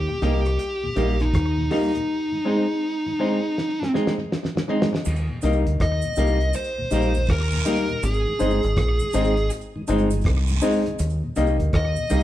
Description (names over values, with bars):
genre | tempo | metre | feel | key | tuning
roots reggae | 81 BPM | 4/4 | swing 63% on 16ths | Eb major | A4 = 440 Hz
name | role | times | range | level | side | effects
fuzz lead guitar | melody | 0.0-12.2 s | Eb4 to Eb5 | -25 LUFS | equal | distortion
deep dub fingered electric bass | bass | 0.0-12.2 s | G1 to Eb2 | -23 LUFS | equal | none
mellow tonewheel organ | accompaniment | 0.1-12.2 s | Eb2 to Eb4 | -33 LUFS | left 1 dB | none
semi-hollow electric guitar | accompaniment | 0.1-12.2 s | G3 to Eb4 | -27 LUFS | right 2 dB | none
warm upright piano | stabs | 0.2-12.2 s | Eb4 to Eb5 | -28 LUFS | left 5 dB | none
cloth-damped thuddy drum kit | drums | 0.2-12.2 s | crash cymbal, hi-hat, kick drum, rim click, snare drum | -26 LUFS | equal | slapback echo
cabasa and guiro | percussion | 5.0-12.2 s | none | -36 LUFS | right 6 dB | slapback echo
room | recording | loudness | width
moderate large studio reverb, RT60 1.4 s | band playing live in one room | -20 LUFS | side -13 dB against mid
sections
0.0-5.1 A section; 5.1-12.2 B section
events
drum fill 3.6-5.1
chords
0.0 Eb; 2.1 Ab; 5.1 Eb; 8.0 Ab; 11.0 Eb